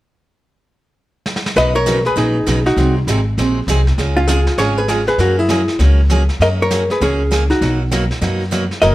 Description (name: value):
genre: country, western swing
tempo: 198 BPM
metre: 4/4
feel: swing 63% on 8ths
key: B major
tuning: A4 = 443 Hz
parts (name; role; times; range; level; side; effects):
- vintage brush drum kit; drums; 1.3-8.9 s; brushed snare drum, hi-hat, snare drum; -25 LUFS; equal; none
- hollow-body jazz guitar; melody; 1.6-8.9 s; C#4 to D#5; -16 LUFS; equal; none
- picked steel-string acoustic guitar; accompaniment; 1.6-8.9 s; B2 to B#4; -21 LUFS; right 3 dB; none
- upright bass; bass; 1.6-8.9 s; F#1 to F#2; -16 LUFS; equal; none
room: moderate studio reverb, RT60 0.8 s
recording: none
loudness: -13 LUFS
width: side -16 dB against mid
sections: 0.4-1.6 A section; 1.6-8.9 B section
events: drum fill 1.3-1.6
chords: 0.4 N.C.; 1.6 Badd9; 2.8 G#7; 4.0 C#; 5.2 F#add9; 7.6 Bmaj7